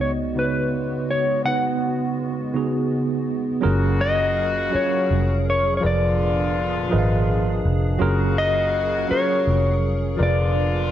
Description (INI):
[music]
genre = slow six-eight R&B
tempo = 55 BPM (dotted quarters)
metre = 6/8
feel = straight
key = F# major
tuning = A4 = 442 Hz
[part]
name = mellow electric guitar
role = melody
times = 0.0-10.9 s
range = B4 to F#5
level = -23 LUFS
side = left 2 dB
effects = slapback echo
[part]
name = mellow tine electric piano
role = accompaniment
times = 0.0-10.9 s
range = C#3 to E#5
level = -24 LUFS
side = right 2 dB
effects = medium stereo tremolo
[part]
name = hollow soft pad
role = sustained chords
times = 0.0-10.9 s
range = A#2 to E#5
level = -31 LUFS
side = right 1 dB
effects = ensemble chorus
[part]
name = vintage muted fingered electric bass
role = bass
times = 0.0-10.9 s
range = E#1 to C#2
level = -22 LUFS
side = equal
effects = none
[part]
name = warm horn section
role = stabs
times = 3.6-10.9 s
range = C#3 to F#4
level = -29 LUFS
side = left 4 dB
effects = none
[sound]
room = moderate echo chamber reverb, RT60 1.4 s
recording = none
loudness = -19 LUFS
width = side -11 dB against mid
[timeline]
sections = 0.0-3.6 A section; 3.6-10.9 B section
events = none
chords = 0.0 C#7sus4; 3.6 F#maj9; 5.8 A#7b9/E#; 8.0 F#maj9; 10.2 A#7b9/E#